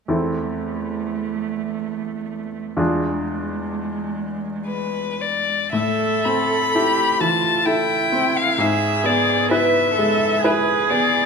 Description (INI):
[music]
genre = classical, slow romantic movement for piano trio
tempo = 55-68 BPM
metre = 3/4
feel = rubato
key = A minor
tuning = A4 = 440 Hz
[part]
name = rich cello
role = second line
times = 0.1-11.3 s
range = G#3 to B4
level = -23 LUFS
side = right 5 dB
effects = none
[part]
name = bright baby grand piano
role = accompaniment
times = 0.1-11.3 s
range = E2 to B4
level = -23 LUFS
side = equal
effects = none
[part]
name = rich violin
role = melody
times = 4.7-11.3 s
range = B4 to B5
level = -20 LUFS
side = left 5 dB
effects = none
[sound]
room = wet scoring stage reverb, RT60 1.7 s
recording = minimal, uncompressed stereo recording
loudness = -18 LUFS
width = side -5 dB against mid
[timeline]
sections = 0.1-5.7 A section; 5.7-11.3 B section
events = none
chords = 0.1 Am/E; 2.8 E7b9; 5.7 Am; 8.6 E/G#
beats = | 0.10 1.02 1.90 | 2.79 3.71 4.68 | 5.73 6.75 7.67 | 8.59 9.51 10.44